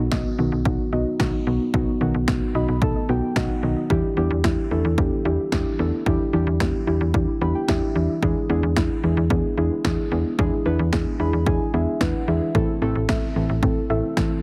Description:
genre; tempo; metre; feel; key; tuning
synth-pop; 111 BPM; 4/4; straight; E minor; A4 = 440 Hz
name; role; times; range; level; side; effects
soft round pluck; arpeggios; 0.0-14.4 s; D#3 to E5; -32 LUFS; equal; chorus, tape echo
slap-like FM bass; bass; 0.0-14.3 s; A1 to E2; -26 LUFS; equal; none
muted felt-like synth keys; accompaniment; 0.1-14.3 s; B3 to B5; -26 LUFS; equal; chorus
house drum kit; drums; 0.1-14.3 s; kick drum, snare drum; -28 LUFS; equal; none
room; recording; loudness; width
light reverb; heavily compressed radio sound, multiband compression; -22 LUFS; mono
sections
0.0-14.4 A section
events
synth keys fill 2.3-3.9, 7.1-8.2, 10.9-12.5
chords
0.0 B; 3.9 Em7; 8.2 E7; 12.5 Am

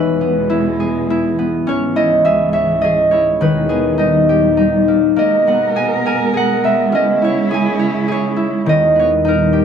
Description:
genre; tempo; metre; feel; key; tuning
children's music, lullaby; 103 BPM; 3/4; straight; G# minor; A4 = 440 Hz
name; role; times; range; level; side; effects
concert harp; melody; 0.0-9.6 s; D#3 to G#5; -13 LUFS; equal; none
dark chamber string section; sustained chords; 0.0-9.6 s; C#2 to A#4; -19 LUFS; right 3 dB; stereo widening
room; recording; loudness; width
light reverb; dry, close 1970s-style studio recording; -12 LUFS; side -7 dB against mid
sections
0.0-9.6 A section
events
none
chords
0.0 E; 1.7 C#m; 3.4 G#m/D#; 4.0 D#; 5.2 G#madd9; 6.9 C#m; 8.7 G#m/D#

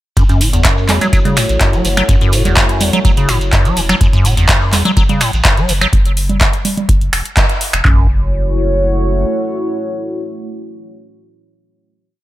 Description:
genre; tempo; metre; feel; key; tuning
acid house; 125 BPM; 4/4; straight; F# minor pentatonic; A4 = 441 Hz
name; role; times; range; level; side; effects
dark analog pad; sustained chords; 0.8-11.9 s; A3 to C#5; -20 LUFS; equal; chorus, phaser, sidechain pumping
liquid acid bass; riff; 0.2-8.1 s; E2 to F#3; -15 LUFS; equal; phaser, sidechain pumping, dub echo
warm sub bass; bass; 0.2-9.2 s; E1 to A1; -18 LUFS; equal; sidechain pumping
booming analog drum machine; drums; 0.2-8.0 s; handclaps, kick drum; -13 LUFS; equal; none
booming analog drum machine; drums; 0.2-7.8 s; congas, finger snaps, handclaps, hi-hat; -16 LUFS; right 1 dB; none
shekere; percussion; 0.2-5.9 s; none; -24 LUFS; right 4 dB; none
room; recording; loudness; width
little or no reverb; none; -11 LUFS; side -15 dB against mid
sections
0.2-7.8 groove; 7.8-11.7 final chord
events
band accent 7.4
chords
0.2 F#m7

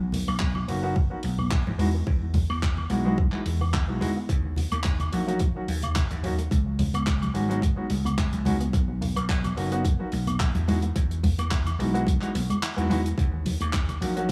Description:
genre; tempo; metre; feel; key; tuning
nu-disco, nu disco; 108 BPM; 4/4; swing 54% on 16ths; unclear; A4 = 440 Hz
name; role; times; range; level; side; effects
analog pluck; arpeggios; 0.0-14.3 s; Db3 to E4; -36 LUFS; equal; chorus, phaser, sidechain pumping, tape echo
vintage slap bass; bass; 0.0-14.3 s; F#1 to Fb2; -30 LUFS; equal; none
tight funk drum kit; drums; 0.1-14.3 s; handclaps, hi-hat, woodblock; -36 LUFS; equal; none
congas; percussion; 0.1-14.0 s; none; -34 LUFS; equal; none
electronic kick drum; drums; 0.4-14.3 s; none; -28 LUFS; equal; none
clear concert grand piano; accompaniment; 0.7-14.3 s; Gb3 to F#4; -32 LUFS; equal; sidechain pumping, tape echo
room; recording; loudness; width
light reverb, small room ambience; none; -26 LUFS; mono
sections
0.0-14.3 A section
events
filter sweep on synth arpeggio sound 0.0-14.3; kick drops out 12.6-13.2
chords
0.0 Bmaj7; 1.8 Emaj7; 4.3 Ebm7; 6.5 Db7sus4; 8.7 Bmaj7; 10.7 Emaj7; 13.2 Ebm7

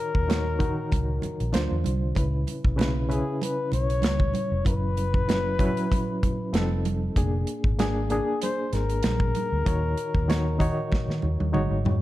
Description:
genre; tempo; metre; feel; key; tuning
lush 1970s-style soul; 96 BPM; 4/4; swing 54% on 16ths; unclear; A4 = 440 Hz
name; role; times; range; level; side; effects
breathy flugelhorn; melody; 0.0-11.5 s; G#4 to C#5; -31 LUFS; left 4 dB; none
barky reed electric piano; accompaniment; 0.0-12.0 s; C#3 to C#5; -30 LUFS; equal; overdrive, fast tremolo
modern studio drum kit; drums; 0.1-12.0 s; hi-hat, kick drum, snare drum, toms; -27 LUFS; equal; none
vintage muted fingered electric bass; bass; 0.2-12.0 s; E#1 to D#3; -27 LUFS; equal; none
congas; percussion; 0.3-12.0 s; none; -35 LUFS; right 5 dB; none
room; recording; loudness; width
light reverb, studio ambience; dark, warm production; -23 LUFS; side -15 dB against mid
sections
0.0-12.0 A section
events
drum fill 10.9-12.0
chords
0.0 D#m7; 1.5 Dm7; 2.2 C#m7; 4.7 F#7sus4; 6.5 F7; 7.2 A#7/E#; 9.7 D#m7

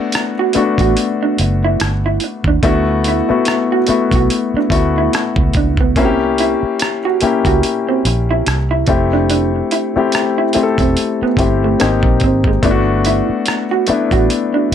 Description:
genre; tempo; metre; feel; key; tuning
R&B, neo-soul; 72 BPM; 4/4; swing 57% on 16ths; unclear; A4 = 440 Hz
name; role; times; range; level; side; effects
warm grand piano; accompaniment; 0.0-14.7 s; A3 to B4; -16 LUFS; left 5 dB; plate reverb
dusty soul sampler-style drum kit; drums; 0.1-14.7 s; hi-hat, kick drum, rim click; -18 LUFS; right 1 dB; none
electric guitar through a small old amp; second line; 0.4-14.7 s; G#3 to F#4; -19 LUFS; right 7 dB; analog delay, plate reverb
vintage muted fingered electric bass; bass; 0.6-14.7 s; E1 to Eb2; -18 LUFS; right 1 dB; none
room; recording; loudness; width
light reverb; none; -12 LUFS; side -9 dB against mid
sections
0.0-14.7 A section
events
none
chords
0.0 Gmaj9; 2.6 D6; 6.0 C7b9; 8.9 Fmaj9; 11.8 G#maj9; 12.6 Gmaj9

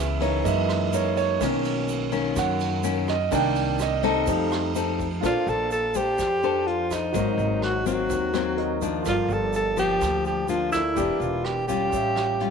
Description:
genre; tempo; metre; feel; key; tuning
bossa nova; 126 BPM; 4/4; straight; Bb major; A4 = 440 Hz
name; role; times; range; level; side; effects
clear grand piano; accompaniment; 0.0-12.5 s; D#3 to G5; -28 LUFS; right 11 dB; none
nylon-string guitar; accompaniment; 0.0-12.5 s; Gb2 to C5; -27 LUFS; left 11 dB; none
upright bass; bass; 0.0-12.5 s; E1 to Gb2; -30 LUFS; equal; none
vintage brush drum kit; drums; 0.2-12.5 s; hi-hat, kick drum, ride cymbal, rim click; -35 LUFS; right 4 dB; none
tube shaker; percussion; 0.2-12.4 s; none; -43 LUFS; right 15 dB; none
clear alto saxophone; melody; 5.3-12.5 s; Eb4 to A4; -25 LUFS; right 1 dB; none
room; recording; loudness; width
moderate plate reverb, RT60 1.7 s, small room ambience; 1960s-style stereo with parts hard left and right; -22 LUFS; side -6 dB against mid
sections
0.0-5.2 A section; 5.2-12.5 B section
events
grand piano solo 0.0-5.2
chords
0.5 Gb13; 1.4 Bmaj9; 3.3 Cm9; 4.3 F7; 5.2 Bbmaj9; 7.1 Ab9; 9.1 Gm7; 11.0 Em7b5; 11.9 A7b13

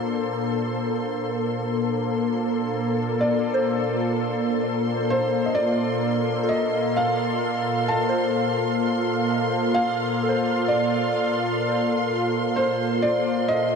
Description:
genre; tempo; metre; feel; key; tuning
ambient; 64 BPM; 4/4; straight; unclear; A4 = 445 Hz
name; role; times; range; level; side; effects
warm analog pad; sustained chords; 0.0-13.8 s; Bb2 to F5; -23 LUFS; left 1 dB; chorus
rich symphonic violin section; texture; 0.0-13.8 s; C6; -34 LUFS; equal; none
felt-muted upright piano; melody; 3.2-13.8 s; C5 to A5; -26 LUFS; right 1 dB; diffuse ambient delay
soft synth bell; arpeggios; 3.5-13.8 s; A4 to C5; -31 LUFS; equal; chorus, phaser, diffuse ambient delay
room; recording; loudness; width
wet huge ambient reverb, RT60 7.2 s; none; -21 LUFS; side -6 dB against mid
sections
0.0-13.8 A section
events
fade-in on violin section 0.0-13.8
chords
0.0 Bbmaj7; 3.2 Dm/Bb

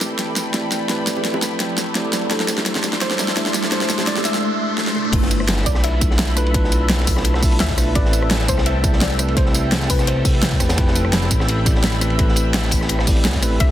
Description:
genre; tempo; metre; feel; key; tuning
liquid drum and bass; 170 BPM; 4/4; straight; unclear; A4 = 441 Hz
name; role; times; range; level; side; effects
mellow tine electric piano; accompaniment; 0.0-13.7 s; A3 to E5; -24 LUFS; equal; digital delay
lush unison pad; sustained chords; 0.0-13.7 s; A4 to D6; -28 LUFS; right 1 dB; chorus, phaser, sidechain pumping
smooth synth bass; bass; 0.0-13.7 s; E1 to E2; -21 LUFS; equal; high-pass filter
pop drum kit; drums; 0.0-13.7 s; crash cymbal, hi-hat, rim click, snare drum, tambourine, toms; -22 LUFS; equal; high-pass filter on snare, high-pass filter on hats, high-pass filter on perc, high-pass filter on toms, high-pass filter on cymbals
riser; sound effects; 0.0-5.1 s; none; -26 LUFS; equal; none
bongos; percussion; 1.2-4.2 s; none; -30 LUFS; right 2 dB; none
soft round pluck; melody; 2.3-10.6, 13.6-13.7 s; A4 to E5; -27 LUFS; left 2 dB; chorus, digital delay
crunchy breakbeat drum kit; drums; 5.1-13.7 s; hi-hat, ride cymbal, snare drum; -27 LUFS; equal; high-pass filter on cymbals, high-pass filter on hats, high-pass filter on snare, high-pass filter on room
electronic kick drum; drums; 5.1-13.7 s; none; -19 LUFS; equal; none
room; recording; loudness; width
light reverb, small room reverb; dense, heavily limited modern master; -16 LUFS; side -12 dB against mid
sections
0.0-5.1 A section; 5.1-13.7 B section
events
build-up 0.0-5.1; drum fill 0.0-4.4, 4.8-5.1; riser 0.0-5.1; drop 5.1-13.7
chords
0.0 Fmaj9#11 (rootless); 2.3 C69; 5.1 G13; 8.0 Am7; 10.8 Fmaj9#11

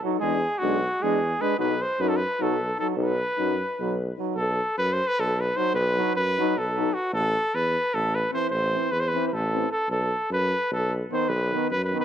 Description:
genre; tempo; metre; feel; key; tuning
balkan folk, Balkan brass band; 304 BPM (eighths); 7/8; straight; unclear; A4 = 440 Hz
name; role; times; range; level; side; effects
brilliant trombone; accompaniment; 0.0-12.0 s; D#3 to G#3; -31 LUFS; right 12 dB; none
clear French horn; accompaniment; 0.0-12.0 s; B3 to D#4; -30 LUFS; left 14 dB; none
clear cornet; melody; 0.2-12.0 s; F#4 to C5; -25 LUFS; equal; none
clear tuba; bass; 0.2-11.9 s; A1 to F#2; -29 LUFS; equal; none
room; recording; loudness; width
moderate spring reverb, RT60 2.5 s; 1960s-style stereo with parts hard left and right; -22 LUFS; side -9 dB against mid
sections
0.0-4.4 A section; 4.4-12.0 B section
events
none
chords
0.2 E7; 1.6 B; 7.1 Am; 9.9 B

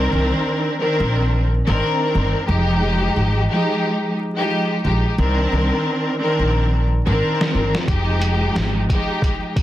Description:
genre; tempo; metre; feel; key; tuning
hip hop, boom-bap hip-hop; 89 BPM; 4/4; swing 58% on 16ths; F dorian; A4 = 441 Hz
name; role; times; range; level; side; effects
warm studio string section; accompaniment; 0.0-9.5 s; Eb3 to Bb4; -19 LUFS; equal; cassette tape, high-pass filter, low-pass filter, plate reverb
upright bass; bass; 0.0-8.8 s; F1 to C2; -19 LUFS; equal; none
lo-fi sampler-style drum kit; drums; 7.4-9.6 s; hi-hat, kick drum, snare drum; -21 LUFS; equal; overdrive
room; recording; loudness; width
light reverb; dense, heavily limited modern master, vinyl crackle; -17 LUFS; side -14 dB against mid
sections
0.0-9.6 A section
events
drum fill 6.5-7.9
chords
0.0 Cm9; 2.5 Fm9; 5.2 Cm9; 7.9 Fm9

